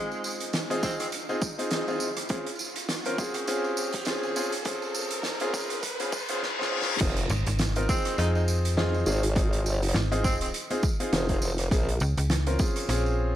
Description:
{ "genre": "glitch hop", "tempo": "102 BPM", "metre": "4/4", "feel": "swing 57% on 16ths", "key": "F minor", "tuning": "A4 = 440 Hz", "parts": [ { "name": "warm tenor saxophone", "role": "melody", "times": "0.0-1.1, 7.9-10.5 s", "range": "Ab3 to Eb4", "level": "-35 LUFS", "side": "right 1 dB", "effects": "analog delay" }, { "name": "clear grand piano", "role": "stabs", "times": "0.0-13.4 s", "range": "C4 to Bb4", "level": "-30 LUFS", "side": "equal", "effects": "vintage 12-bit sampler grit, sidechain pumping, analog delay" }, { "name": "riser, reverse cymbal and impact", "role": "sound effects", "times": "0.2-9.4 s", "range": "none", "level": "-35 LUFS", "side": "left 1 dB", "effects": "none" }, { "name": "oversized low-tuned drum kit", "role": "drums", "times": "0.1-13.2 s", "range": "crash cymbal, hi-hat, rim click, snare drum, tambourine", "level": "-32 LUFS", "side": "right 1 dB", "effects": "none" }, { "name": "electronic kick drum", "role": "drums", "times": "0.8-12.7 s", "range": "none", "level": "-28 LUFS", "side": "equal", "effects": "overdrive" }, { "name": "formant-sweep wobble bass", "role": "bass", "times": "7.0-12.0 s", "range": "F1 to Bb1", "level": "-26 LUFS", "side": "equal", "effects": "chorus" }, { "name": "slap-like FM bass", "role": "bass", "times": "7.3-13.4 s", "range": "Ab1 to F2", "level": "-26 LUFS", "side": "equal", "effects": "tube saturation" } ], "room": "light reverb, studio reverb", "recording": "vinyl crackle, high-pass filter", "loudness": "-25 LUFS", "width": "side -12 dB against mid", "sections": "0.0-7.0 A section; 7.0-13.4 B section", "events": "build-up 0.0-7.0; riser 0.2-6.4; reverse cymbal 5.8-7.0; drum fill 6.4-7.0; drop 7.0-13.4; impact 7.0-9.4", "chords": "0.0 Fm7; 2.3 Bbm7 (rootless); 7.0 Fm7; 11.7 Bbm7" }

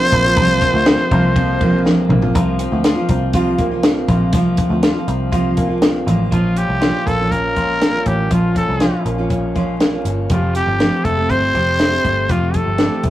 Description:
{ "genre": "jangly indie pop", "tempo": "120 BPM", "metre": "4/4", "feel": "straight", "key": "F major", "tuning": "A4 = 440 Hz", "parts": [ { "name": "growling trumpet", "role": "melody", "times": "0.0-1.9, 6.3-13.1 s", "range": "F4 to C5", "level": "-18 LUFS", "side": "equal", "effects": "none" }, { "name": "picked steel-string acoustic guitar", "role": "accompaniment", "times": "0.0-13.1 s", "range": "Bb2 to G4", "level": "-21 LUFS", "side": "right 2 dB", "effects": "none" }, { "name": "electric guitar through a small old amp", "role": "arpeggios", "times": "0.0-13.1 s", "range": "F3 to G4", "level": "-22 LUFS", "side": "left 2 dB", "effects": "none" }, { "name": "vintage muted picked electric bass", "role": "bass", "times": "0.0-13.1 s", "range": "F1 to D2", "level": "-20 LUFS", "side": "equal", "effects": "none" }, { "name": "compact cocktail drum kit", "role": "drums", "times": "0.1-13.1 s", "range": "hi-hat, kick drum, ride cymbal, snare drum, toms", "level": "-18 LUFS", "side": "equal", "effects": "none" } ], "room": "light reverb", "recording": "rough rehearsal-room recording, vinyl crackle", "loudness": "-14 LUFS", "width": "side -14 dB against mid", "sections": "0.0-2.3 A section; 2.3-6.3 B section; 6.3-13.1 C section", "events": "drum fill 1.9-2.3", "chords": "0.0 Fsus4; 6.3 Bbm; 10.3 Fadd9" }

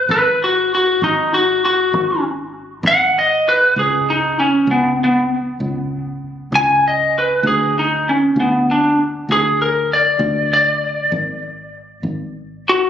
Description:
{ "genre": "slow blues", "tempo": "65 BPM (dotted quarters)", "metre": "12/8", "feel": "straight", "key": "unclear", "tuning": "A4 = 440 Hz", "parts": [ { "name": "lightly driven lead guitar", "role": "melody", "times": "0.0-12.9 s", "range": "Cb4 to Ab5", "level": "-14 LUFS", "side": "equal", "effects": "analog delay" }, { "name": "fingered electric bass", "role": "bass", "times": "0.0-12.9 s", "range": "Ab1 to D2", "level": "-24 LUFS", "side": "equal", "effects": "none" } ], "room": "moderate studio ambience, RT60 0.5 s", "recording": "recorded on a phone in the room, club reverb, lossy compression artefacts", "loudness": "-14 LUFS", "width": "side -9 dB against mid", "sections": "0.0-12.9 A section", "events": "lead electric guitar solo 0.0-12.9", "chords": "0.0 Ab7(no3); 3.8 Abmadd11/Db (rootless); 7.4 N.C.; 11.1 Ab5" }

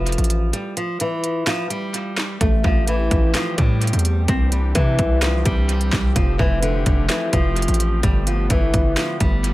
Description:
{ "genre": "hip hop, trap", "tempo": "128 BPM", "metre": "4/4", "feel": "half-time", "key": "unclear", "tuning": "A4 = 440 Hz", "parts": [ { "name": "flamenco guitar", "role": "melody", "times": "0.0-9.5 s", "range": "D3 to C4", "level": "-23 LUFS", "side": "equal", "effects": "tape echo" }, { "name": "distorted 808-style bass", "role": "bass", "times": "0.0-9.5 s", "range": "F1 to C3", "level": "-20 LUFS", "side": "equal", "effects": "distortion" }, { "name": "trap drum kit", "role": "drums", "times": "0.1-9.5 s", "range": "handclaps, hi-hat, kick drum, snare drum", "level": "-21 LUFS", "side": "equal", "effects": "none" }, { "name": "warm analog pad", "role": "sustained chords", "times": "2.4-9.5 s", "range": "D3 to G4", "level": "-30 LUFS", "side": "left 1 dB", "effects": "chorus" } ], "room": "little or no reverb", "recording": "echo-heavy mix", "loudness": "-17 LUFS", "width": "side -17 dB against mid", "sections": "0.0-9.5 A section", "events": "break 0.5-2.4", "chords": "0.0 F; 0.5 N.C.; 2.4 Am7; 4.3 Cadd9; 6.2 Fadd9; 8.0 Gadd9" }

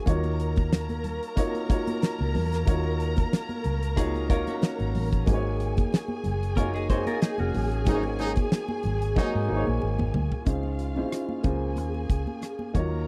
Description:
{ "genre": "lush 1970s-style soul", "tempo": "92 BPM", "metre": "4/4", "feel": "swing 54% on 16ths", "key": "Eb dorian", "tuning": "A4 = 440 Hz", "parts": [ { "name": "warm studio string section", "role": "second line", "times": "0.0-13.1 s", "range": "F4 to Bb5", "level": "-37 LUFS", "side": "equal", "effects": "none" }, { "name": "dark baby grand piano", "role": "accompaniment", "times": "0.0-13.1 s", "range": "Bb3 to F5", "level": "-34 LUFS", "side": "equal", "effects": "none" }, { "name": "vintage muted fingered electric bass", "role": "bass", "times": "0.1-13.1 s", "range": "F1 to Ab2", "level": "-31 LUFS", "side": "equal", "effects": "none" }, { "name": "damped 70s drum kit", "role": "drums", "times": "0.1-12.9 s", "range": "hi-hat, kick drum, rim click, snare drum, toms", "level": "-27 LUFS", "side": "equal", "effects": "none" }, { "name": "congas", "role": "percussion", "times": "0.1-12.9 s", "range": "none", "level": "-38 LUFS", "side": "equal", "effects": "none" }, { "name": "clean electric guitar", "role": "riff", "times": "4.0-8.3 s", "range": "Db4 to C5", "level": "-37 LUFS", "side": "equal", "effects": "phaser" }, { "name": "clear horn section", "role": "stabs", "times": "7.9-9.6 s", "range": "Ab2 to Eb4", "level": "-33 LUFS", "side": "equal", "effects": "none" } ], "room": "little or no reverb", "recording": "dry, close 1970s-style studio recording", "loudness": "-27 LUFS", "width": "mono", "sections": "0.0-10.5 A section; 10.5-13.1 B section", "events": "band accent 7.9-10.5; drum fill 9.2-10.5", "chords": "0.1 Ebm7; 5.3 Ab7sus4; 10.5 Dbmaj7; 11.4 Bbm7/Db" }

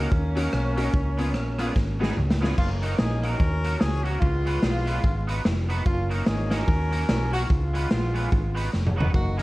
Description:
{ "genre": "ska", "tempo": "146 BPM", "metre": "4/4", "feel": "swing 59% on 8ths", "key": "F# major", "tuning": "A4 = 440 Hz", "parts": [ { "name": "warm horn section", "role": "melody", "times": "0.0-9.4 s", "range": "G#3 to A#4", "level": "-30 LUFS", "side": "equal", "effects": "slapback echo" }, { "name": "electric guitar at the edge of break-up", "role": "accompaniment", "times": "0.0-9.4 s", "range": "F#3 to B4", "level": "-34 LUFS", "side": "right 2 dB", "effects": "analog chorus" }, { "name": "honky-tonk upright piano", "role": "stabs", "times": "0.0-2.5 s", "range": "G#3 to F#4", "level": "-33 LUFS", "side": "left 2 dB", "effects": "slapback echo" }, { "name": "hollow-body short-scale fingered electric bass", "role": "bass", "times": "0.0-9.4 s", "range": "E#1 to D#2", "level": "-26 LUFS", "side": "equal", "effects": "tube saturation" }, { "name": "raw garage drum kit", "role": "drums", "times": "0.1-9.4 s", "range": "crash cymbal, hi-hat, kick drum, rim click, snare drum, toms", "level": "-26 LUFS", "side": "equal", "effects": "slapback echo" } ], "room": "light reverb, small room ambience", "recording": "dark, warm production, vinyl crackle", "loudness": "-22 LUFS", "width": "side -19 dB against mid", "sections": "0.0-2.6 A section; 2.6-9.4 A section", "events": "drum fill 1.8-2.6, 8.7-9.1", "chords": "0.1 D#m7; 0.9 C#7; 1.8 G#m7; 2.2 C#7; 2.6 F#6; 3.4 D#m7; 4.2 C#7; 5.0 G#m7; 5.9 F#6; 6.7 D#m7; 7.5 C#7; 8.3 G#m7" }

